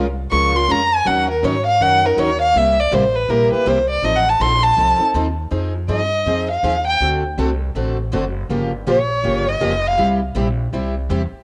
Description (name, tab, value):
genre	acoustic string swing (jazz manouche)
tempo	161 BPM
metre	4/4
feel	swing 61% on 8ths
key	unclear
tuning	A4 = 444 Hz
part	picked plugged-in steel-string acoustic guitar	accompaniment	0.0-11.2 s	C3 to Bb4	-26 LUFS	equal	cassette tape
part	picked steel-string acoustic guitar	accompaniment	0.0-11.2 s	C3 to Bb4	-29 LUFS	equal	cassette tape
part	upright bass	bass	0.0-11.4 s	F1 to Ab2	-25 LUFS	equal	none
part	dark violin	melody	0.3-10.0 s	Bb4 to Db6	-19 LUFS	equal	cassette tape
room	moderate spring reverb, RT60 1.6 s, small room ambience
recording	home recording on cassette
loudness	-18 LUFS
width	mono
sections	0.0-5.5 A section; 5.5-11.4 A section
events	violin solo 0.0-5.5, 5.5-11.4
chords	0.0 Bbm9; 1.1 Ebm7; 2.6 C7; 4.0 F7; 5.5 Fm7; 7.0 D7; 8.5 Gm7b5; 10.0 C